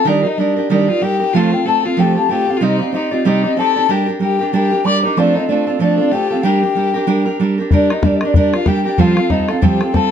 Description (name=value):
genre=celtic folk, Celtic reel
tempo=188 BPM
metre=4/4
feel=swing 58% on 8ths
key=G minor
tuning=A4 = 440 Hz
part: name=mellow hollow wooden flute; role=melody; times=0.0-10.1 s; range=D5 to D6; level=-18 LUFS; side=left 2 dB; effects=plate reverb
part: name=dark fiddle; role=second line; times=0.0-10.1 s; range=D4 to D5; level=-20 LUFS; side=left 6 dB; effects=none
part: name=fingerpicked steel-string acoustic guitar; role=accompaniment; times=0.0-10.1 s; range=C3 to D5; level=-16 LUFS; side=right 4 dB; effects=none
part: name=bodhran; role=percussion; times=7.7-10.0 s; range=none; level=-16 LUFS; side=left 2 dB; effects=none
room=light reverb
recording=dark, warm production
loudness=-13 LUFS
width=side -8 dB against mid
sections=0.0-7.7 A section; 7.7-10.1 A section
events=none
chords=0.1 Eb; 1.3 F; 2.6 Cmadd9; 3.9 Gm; 5.2 F; 6.4 Gm; 9.0 Fadd9